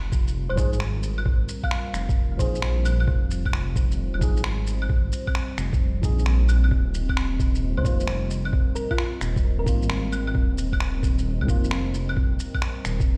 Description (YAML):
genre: future garage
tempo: 132 BPM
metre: 4/4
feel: swing 67% on 16ths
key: F minor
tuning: A4 = 442 Hz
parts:
  - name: deep dark ambient pad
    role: sustained chords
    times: 0.0-13.2 s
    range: G3 to Eb5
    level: -36 LUFS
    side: equal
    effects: chorus, built-in reverb, vintage 12-bit sampler grit, sidechain pumping
  - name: dark detuned saw bass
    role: bass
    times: 0.0-13.2 s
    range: Eb1 to Db2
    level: -26 LUFS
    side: equal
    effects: sidechain pumping
  - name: electronic kick drum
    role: drums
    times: 0.1-13.1 s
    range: none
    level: -25 LUFS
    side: equal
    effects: none
  - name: electronic shaker, claves and finger snaps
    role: drums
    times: 0.1-13.1 s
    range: none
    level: -35 LUFS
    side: equal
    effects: none
  - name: thumb-piano-like synth pluck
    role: melody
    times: 0.5-3.0, 7.8-9.8 s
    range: F4 to F5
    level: -36 LUFS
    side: equal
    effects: chorus, tape echo
  - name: tine electric piano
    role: accompaniment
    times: 0.6-11.7 s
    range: Eb3 to Ab4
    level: -38 LUFS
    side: equal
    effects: sidechain pumping, analog delay
room: light reverb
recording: played on a big sound system in a bare room, stone room reverb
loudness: -24 LUFS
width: mono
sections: 0.0-13.2 A section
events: none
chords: 0.0 Fm7; 6.7 Ebsus2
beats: 0.35 0.80 | 1.26 1.71 2.17 2.62 | 3.08 3.53 3.98 4.44 | 4.89 5.35 5.80 6.26 | 6.71 7.17 7.62 8.08 | 8.53 8.98 9.44 9.89 | 10.35 10.80 11.26 11.71 | 12.17 12.62 13.08